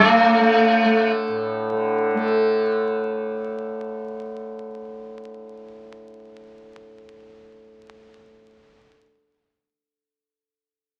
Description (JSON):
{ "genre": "indian classical", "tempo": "202 BPM", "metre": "4/4", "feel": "straight", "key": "unclear", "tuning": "A4 = 440 Hz", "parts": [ { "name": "sitar", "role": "melody", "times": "0.0-1.1 s", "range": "A3", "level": "-17 LUFS", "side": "equal", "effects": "none" }, { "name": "tanpura", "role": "drone", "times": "0.0-8.9 s", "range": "A2 to A3", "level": "-26 LUFS", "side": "equal", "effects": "none" } ], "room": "wet studio reverb, RT60 0.5 s", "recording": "very old 78 rpm record, vinyl crackle", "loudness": "-21 LUFS", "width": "mono", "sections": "0.0-2.3 A section", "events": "none", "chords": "none", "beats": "0.25 0.55 0.85 | 1.15 1.44 1.74 2.03" }